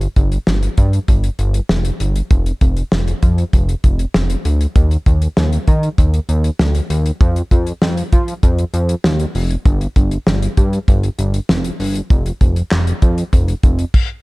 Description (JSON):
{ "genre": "synth-pop", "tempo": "98 BPM", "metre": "4/4", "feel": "straight", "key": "unclear", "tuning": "A4 = 437 Hz", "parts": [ { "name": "chorused synth bass", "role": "bass", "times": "0.0-13.8 s", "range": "F1 to F3", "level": "-16 LUFS", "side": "equal", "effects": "none" }, { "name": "damped 70s drum kit", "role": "drums", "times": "0.0-14.1 s", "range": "crash cymbal, handclaps, hi-hat, kick drum, snare drum", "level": "-14 LUFS", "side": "equal", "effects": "none" } ], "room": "little or no reverb", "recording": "dark, warm production", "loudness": "-13 LUFS", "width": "side -23 dB against mid", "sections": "0.0-14.2 A section", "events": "none", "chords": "none", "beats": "0.47 1.08 1.70 | 2.31 2.92 3.53 4.14 | 4.76 5.37 5.98 6.59 | 7.21 7.82 8.43 9.04 | 9.65 10.27 10.88 11.49 | 12.10 12.72 13.33 13.94" }